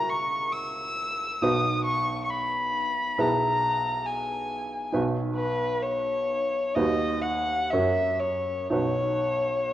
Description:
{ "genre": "classical, romantic duo for violin and grand piano", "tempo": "58-69 BPM", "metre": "4/4", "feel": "rubato", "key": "B major", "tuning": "A4 = 437 Hz", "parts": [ { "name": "rich violin", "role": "melody", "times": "0.0-9.7 s", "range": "B4 to E6", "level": "-26 LUFS", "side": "left 2 dB", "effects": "none" }, { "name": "bright baby grand piano", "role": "accompaniment", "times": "0.0-9.7 s", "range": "B1 to B4", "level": "-28 LUFS", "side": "right 2 dB", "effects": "none" } ], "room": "moderate recital hall reverb, RT60 1.6 s", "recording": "worn, warbling old tape, cassette tape, warbly pitch drift", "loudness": "-24 LUFS", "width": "side -13 dB against mid", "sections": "0.0-9.7 A section", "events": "none", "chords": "0.0 F#7/C#; 1.4 B; 3.2 E/B; 4.9 B; 6.8 B/D#; 7.7 F#7; 8.7 B" }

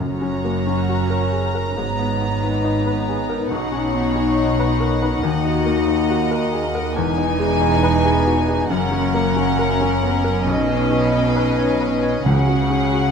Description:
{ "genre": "cinematic, emotional film score for orchestra", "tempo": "69 BPM", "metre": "4/4", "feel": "rubato", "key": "F# major", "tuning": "A4 = 438 Hz", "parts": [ { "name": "warm symphonic violin section", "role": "melody", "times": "0.0-13.1 s", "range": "D#5 to A#5", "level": "-28 LUFS", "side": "left 4 dB", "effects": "none" }, { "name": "bright clarinet", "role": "second line", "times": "0.0-13.1 s", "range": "B3 to F#4", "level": "-28 LUFS", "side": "left 1 dB", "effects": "none" }, { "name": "flute section", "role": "second line", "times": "0.0-13.1 s", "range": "D#5 to C#6", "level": "-29 LUFS", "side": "left 2 dB", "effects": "none" }, { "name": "warm symphonic violin section", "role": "second line", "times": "0.0-13.1 s", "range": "G#4 to D#5", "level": "-28 LUFS", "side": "left 3 dB", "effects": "none" }, { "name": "bright baby grand piano", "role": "accompaniment", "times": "0.0-13.1 s", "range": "B1 to C#5", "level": "-25 LUFS", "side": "equal", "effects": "none" }, { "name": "dark symphonic viola section", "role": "accompaniment", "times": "0.0-13.1 s", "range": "C#4 to F#4", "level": "-29 LUFS", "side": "right 2 dB", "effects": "none" }, { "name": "mellow French horn section", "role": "sustained chords", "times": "0.0-13.1 s", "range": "G#3 to C#5", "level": "-29 LUFS", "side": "left 4 dB", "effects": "none" }, { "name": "concert harp", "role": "arpeggios", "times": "0.0-13.1 s", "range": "F#2 to B5", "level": "-25 LUFS", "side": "left 12 dB", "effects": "none" }, { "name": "rich symphonic cello section", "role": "bass", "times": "0.0-13.1 s", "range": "D#2 to C#3", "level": "-25 LUFS", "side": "right 4 dB", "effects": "none" }, { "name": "warm symphonic double bass section", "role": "bass", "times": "0.0-13.1 s", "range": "E1 to D#2", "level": "-24 LUFS", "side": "right 5 dB", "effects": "none" }, { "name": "timpani", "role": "percussion", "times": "0.0-1.3, 12.3-13.1 s", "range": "F#2 to C#3", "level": "-24 LUFS", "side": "right 1 dB", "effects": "none" } ], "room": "light reverb", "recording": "close, detailed microphones", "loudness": "-17 LUFS", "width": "side -6 dB against mid", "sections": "0.0-13.1 A section", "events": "none", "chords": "0.0 F#; 1.8 G#madd9; 3.5 Badd9; 5.2 D#m; 7.0 Emaj7; 8.7 F#; 10.5 Badd9; 12.3 C#sus4" }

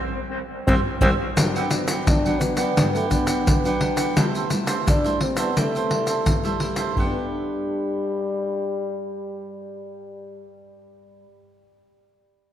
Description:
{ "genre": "samba and choro", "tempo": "86 BPM", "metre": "4/4", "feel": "straight", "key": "G major", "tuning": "A4 = 444 Hz", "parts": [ { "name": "growling trombone", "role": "melody", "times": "0.7-10.5 s", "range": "G3 to D4", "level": "-26 LUFS", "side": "left 1 dB", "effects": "diffuse ambient delay" }, { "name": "cavaquinho", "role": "accompaniment", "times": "0.7-11.3 s", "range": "D4 to F#5", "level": "-29 LUFS", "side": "right 6 dB", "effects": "none" }, { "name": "nylon-string guitar", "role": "accompaniment", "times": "0.7-11.3 s", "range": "G2 to E4", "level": "-28 LUFS", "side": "left 1 dB", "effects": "none" }, { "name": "surdo, egg shaker and pandeiro", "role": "percussion", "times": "0.7-7.1 s", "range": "none", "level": "-22 LUFS", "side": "equal", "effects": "none" } ], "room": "wet lush hall reverb, RT60 2.3 s", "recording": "dreamy mix soaked in reverb", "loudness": "-20 LUFS", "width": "side -10 dB against mid", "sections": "0.0-1.4 A section; 1.4-7.0 B section; 7.0-9.8 C section", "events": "band accent 0.0-1.4", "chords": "0.0 Cadd9; 1.4 Gmaj7; 4.2 C6; 7.0 Gmaj7" }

